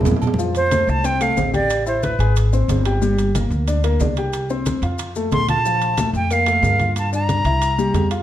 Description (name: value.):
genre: Afro-Cuban jazz.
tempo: 183 BPM.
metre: 4/4.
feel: straight.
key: F major.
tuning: A4 = 444 Hz.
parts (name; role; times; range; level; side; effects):
warm grand piano; accompaniment; 0.0-8.2 s; F3 to Ab5; -23 LUFS; left 3 dB; none.
upright bass; bass; 0.0-8.2 s; G1 to G2; -21 LUFS; equal; none.
congas; percussion; 0.0-8.1 s; none; -25 LUFS; equal; none.
maracas; percussion; 0.1-8.2 s; none; -38 LUFS; left 5 dB; none.
timbales and agogo bells; percussion; 0.1-8.2 s; none; -29 LUFS; right 6 dB; none.
breathy silver concert flute; melody; 0.6-2.4, 5.3-8.1 s; B4 to C6; -20 LUFS; right 1 dB; none.
room: moderate large studio reverb, RT60 1.3 s.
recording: dark, warm production.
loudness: -16 LUFS.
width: side -12 dB against mid.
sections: 0.4-8.2 A section.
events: drum fill 0.0-0.4.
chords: 0.4 Fadd9; 1.7 Asus2; 2.4 Ab; 3.0 Gm; 4.3 C5; 5.0 F; 5.6 Bb5; 7.0 Gm7; 7.6 C7.